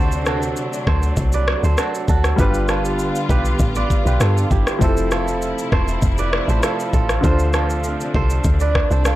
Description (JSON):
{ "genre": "afrobeats", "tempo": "99 BPM", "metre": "4/4", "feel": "straight", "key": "unclear", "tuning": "A4 = 440 Hz", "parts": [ { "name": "warm grand piano", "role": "accompaniment", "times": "0.0-9.2 s", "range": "D3 to D5", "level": "-26 LUFS", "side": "left 2 dB", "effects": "none" }, { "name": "warm studio string section", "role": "sustained chords", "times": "0.0-9.2 s", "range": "C3 to F4", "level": "-26 LUFS", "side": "left 1 dB", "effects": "none" }, { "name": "kora", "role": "riff", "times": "0.0-9.2 s", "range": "E4 to D5", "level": "-24 LUFS", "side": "right 6 dB", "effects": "none" }, { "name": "deep log drum bass", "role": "bass", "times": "0.0-9.2 s", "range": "E1 to G2", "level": "-19 LUFS", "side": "equal", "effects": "none" }, { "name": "afro-pop drum kit", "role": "drums", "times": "0.1-9.2 s", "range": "kick drum, rim click, shaker", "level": "-20 LUFS", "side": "equal", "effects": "none" } ], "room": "little or no reverb", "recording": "dry, gritty hardware recording, transformer saturation, cassette tape", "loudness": "-16 LUFS", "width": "side -15 dB against mid", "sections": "0.0-9.2 A section", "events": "none", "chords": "0.0 D7; 2.4 G7; 4.8 Fmaj7; 7.2 Dm7" }